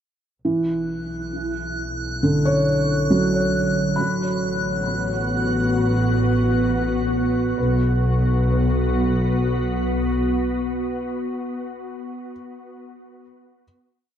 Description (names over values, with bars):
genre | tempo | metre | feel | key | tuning
ambient | 68 BPM | 4/4 | straight | B minor | A4 = 440 Hz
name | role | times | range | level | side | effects
felt-muted upright piano | arpeggios | 0.4-13.6 s | D3 to B5 | -22 LUFS | right 1 dB | diffuse ambient delay
clear studio double bass section | bass | 0.4-10.2 s | A1 to B1 | -24 LUFS | equal | none
drifting glass-harmonics texture | texture | 0.8-7.6 s | F#6 | -30 LUFS | equal | chorus, built-in reverb
organ-like drone | drone | 4.8-12.0 s | B3 to F#4 | -23 LUFS | equal | ensemble chorus, built-in reverb
room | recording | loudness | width
moderate huge ambient reverb, RT60 8.8 s | dark, warm production | -19 LUFS | side -9 dB against mid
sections
0.4-7.6 A section; 7.6-11.1 final chord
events
fade-in on double bass section 0.4-7.6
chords
0.4 Bm; 4.0 A; 7.6 B5